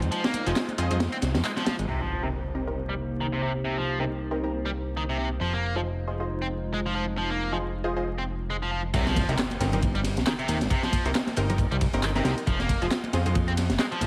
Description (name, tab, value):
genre	breakbeat, breaks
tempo	136 BPM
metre	4/4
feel	swing 57% on 16ths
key	unclear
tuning	A4 = 441 Hz
part	warbly tape-like pad	sustained chords	0.0-8.9 s	Ab3 to C5	-38 LUFS	equal	chorus, built-in reverb, phaser, sidechain pumping
part	fat analog bass	bass	0.0-14.1 s	F1 to F2	-32 LUFS	equal	none
part	punchy analog drum machine	drums	0.0-1.9, 8.9-14.1 s	handclaps, hi-hat, ride cymbal	-38 LUFS	equal	none
part	overdriven electric guitar	riff	0.1-14.1 s	C3 to C4	-34 LUFS	equal	tube saturation, vintage 12-bit sampler grit, low-pass filter, dub echo
part	crunchy breakbeat drum kit	drums	0.1-1.9, 8.9-14.1 s	crash cymbal, kick drum, ride cymbal, snare drum	-30 LUFS	equal	none
part	congas	percussion	0.3-1.8, 9.2-14.1 s	none	-38 LUFS	equal	none
part	orchestra-hit-like synth stab	stabs	0.5-13.3 s	C4 to Eb5	-36 LUFS	equal	built-in reverb, dub echo
part	impact	sound effects	1.9-3.6, 9.1-10.7 s	none	-41 LUFS	equal	none
room	light reverb, small room reverb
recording	vinyl crackle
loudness	-27 LUFS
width	mono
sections	0.0-1.9 A section; 1.9-8.9 B section; 8.9-14.1 C section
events	kick drops out 1.0-1.9; band accent 1.4; impact 1.9-3.6, 8.9-10.7; drop 8.9-14.1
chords	0.0 Fm7; 1.9 Cm7; 5.4 Fm7; 8.9 Cm7; 12.5 Fm7